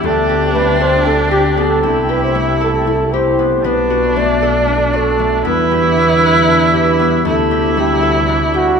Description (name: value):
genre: contemporary instrumental, chamber music in an uneven meter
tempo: 233 BPM (eighths)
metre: 7/8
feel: straight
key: unclear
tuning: A4 = 440 Hz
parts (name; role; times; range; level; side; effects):
- breathy flugelhorn; melody; 0.0-8.8 s; F#4 to D5; -17 LUFS; right 3 dB; none
- rich viola; second line; 0.0-8.8 s; D4 to E4; -17 LUFS; right 1 dB; none
- muted studio string section; sustained chords; 0.0-8.8 s; B2 to G4; -24 LUFS; left 3 dB; none
- concert harp; arpeggios; 0.0-8.8 s; A3 to B4; -18 LUFS; left 8 dB; none
- warm double bass; bass; 0.0-8.8 s; B1 to E2; -19 LUFS; right 3 dB; none
room: moderate recital hall reverb, RT60 1.6 s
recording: minimal, uncompressed stereo recording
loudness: -11 LUFS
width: side -6 dB against mid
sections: 0.0-8.8 A section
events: none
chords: 0.0 D7sus4; 1.8 Am7/C; 3.6 Bm7; 5.5 Em7; 7.3 D7sus4